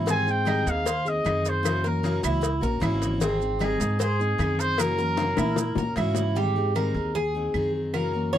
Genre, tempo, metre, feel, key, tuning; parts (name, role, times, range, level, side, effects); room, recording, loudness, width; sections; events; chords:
latin, Cuban son and guajira; 153 BPM; 4/4; straight; Ab major; A4 = 440 Hz
picked steel-string acoustic guitar; accompaniment; 0.0-8.4 s; Db3 to Ab4; -28 LUFS; left 2 dB
Cuban tres; arpeggios; 0.0-8.4 s; C4 to Db5; -29 LUFS; right 2 dB
upright bass; bass; 0.0-8.4 s; Ab1 to Bb2; -28 LUFS; equal
warm trumpet; melody; 0.1-6.0 s; Ab4 to Ab5; -27 LUFS; equal
cowbell and bongos; percussion; 0.1-6.4 s; -31 LUFS; left 7 dB
maracas; percussion; 0.1-6.4 s; -37 LUFS; right 22 dB
claves; percussion; 0.5-8.1 s; -38 LUFS; right 19 dB
light reverb; dry, close 1970s-style studio recording; -22 LUFS; side -11 dB against mid
0.0-6.4 A section; 6.4-8.4 B section
drum fill 5.2-6.4; Cuban tres solo 6.4-8.4
0.1 Abmaj7; 1.6 Gb7; 3.2 Abmaj7; 4.8 Gb7; 6.4 Abmaj7